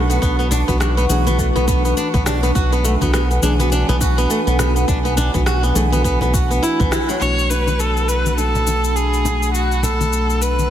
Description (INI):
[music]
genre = organic downtempo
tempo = 103 BPM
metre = 4/4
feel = swing 58% on 16ths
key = B dorian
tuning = A4 = 440 Hz
[part]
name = muted felt-like synth keys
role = accompaniment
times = 0.0-10.7 s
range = E3 to G#4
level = -26 LUFS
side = left 1 dB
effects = chorus, sidechain pumping, tape echo
[part]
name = warbly tape-like pad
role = sustained chords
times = 0.0-10.7 s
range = A3 to C#6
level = -25 LUFS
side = right 1 dB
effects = chorus, built-in reverb, sidechain pumping
[part]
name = flamenco guitar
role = arpeggios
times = 0.0-7.2 s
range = F#3 to F#4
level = -21 LUFS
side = right 1 dB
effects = vintage 12-bit sampler grit, tape echo
[part]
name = round analog bass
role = bass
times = 0.0-10.7 s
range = B1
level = -19 LUFS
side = equal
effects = sidechain pumping
[part]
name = electronic cabasa and rim click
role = drums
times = 0.1-10.7 s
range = none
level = -26 LUFS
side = left 2 dB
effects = soft clipping on snare
[part]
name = electronic kick drum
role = drums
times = 0.2-6.9 s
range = none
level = -21 LUFS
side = equal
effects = none
[part]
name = congas and bongos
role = percussion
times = 0.5-10.7 s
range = none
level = -27 LUFS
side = left 4 dB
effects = none
[part]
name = clear kamancheh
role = melody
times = 7.2-10.7 s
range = F#4 to C#5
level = -20 LUFS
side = equal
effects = tape echo
[sound]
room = light reverb, digital ambience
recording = dense, heavily limited modern master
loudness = -15 LUFS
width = side -11 dB against mid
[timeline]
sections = 0.0-7.2 A section; 7.2-10.7 B section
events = band accent 6.9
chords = 0.0 Bmadd9; 7.2 Bm7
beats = | 0.22 0.80 1.39 1.97 | 2.55 3.13 3.72 4.30 | 4.88 5.46 6.05 6.63 | 7.21 7.79 8.38 8.96 | 9.54 10.12